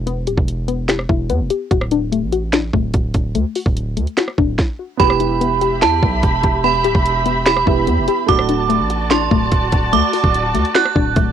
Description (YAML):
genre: hip hop, trap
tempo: 146 BPM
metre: 4/4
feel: half-time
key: E minor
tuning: A4 = 444 Hz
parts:
  - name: warbly dusty pluck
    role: arpeggios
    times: 0.0-11.3 s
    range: A3 to G4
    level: -21 LUFS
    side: left 10 dB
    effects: chorus, low-pass filter, tape echo
  - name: hard-hitting 808-style bass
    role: bass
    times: 0.0-11.3 s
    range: D1 to E2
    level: -21 LUFS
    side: equal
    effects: none
  - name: trap drum kit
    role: drums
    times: 0.1-11.3 s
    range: finger snaps, hi-hat, kick drum, rim click, snare drum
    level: -18 LUFS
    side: right 1 dB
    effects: overdrive, cassette tape
  - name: metallic FM bell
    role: second line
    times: 5.0-11.1 s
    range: A5 to F#6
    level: -18 LUFS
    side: right 13 dB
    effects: chorus, tape echo
  - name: dark concert grand piano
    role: accompaniment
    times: 5.0-11.3 s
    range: A3 to G4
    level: -25 LUFS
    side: right 11 dB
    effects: low-pass filter
  - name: dark symphonic string section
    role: sustained chords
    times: 5.0-11.3 s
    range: F#4 to B5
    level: -22 LUFS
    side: left 2 dB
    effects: none
room: little or no reverb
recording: home recording on cassette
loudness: -14 LUFS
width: side -9 dB against mid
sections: 0.0-5.0 A section; 5.0-11.3 B section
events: stop 4.6-5.0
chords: 0.0 Em; 1.7 D; 5.0 Em; 8.3 D